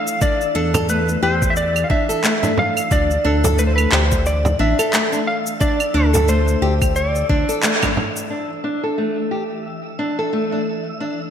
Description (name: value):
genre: organic downtempo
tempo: 89 BPM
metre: 4/4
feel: swing 58% on 16ths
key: unclear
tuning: A4 = 440 Hz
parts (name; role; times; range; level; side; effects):
- electric slide guitar; melody; 0.0-7.9 s; A4 to F5; -22 LUFS; equal; digital delay
- wind-like tuned noise texture; texture; 0.0-11.3 s; E3 to E6; -32 LUFS; equal; built-in reverb, analog chorus
- electronic cabasa, claves and handclaps; drums; 0.1-8.3 s; none; -22 LUFS; equal; gated reverb
- nylon-string guitar; arpeggios; 0.2-11.2 s; A3 to A4; -21 LUFS; equal; low-pass filter, digital delay
- electronic kick drum; drums; 0.2-7.9 s; none; -20 LUFS; equal; overdrive
- smooth synth bass; bass; 0.6-7.4 s; A1 to E2; -19 LUFS; equal; sidechain pumping
- frame drum; percussion; 0.7-8.1 s; none; -25 LUFS; right 2 dB; none
room: moderate lush hall reverb, RT60 1.8 s, digital ambience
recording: bright 1980s-style digital production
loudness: -16 LUFS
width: side -8 dB against mid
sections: 0.0-8.3 A section; 8.3-11.3 B section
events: band accent 7.6-8.0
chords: 0.0 E7(no3); 2.9 Dsus2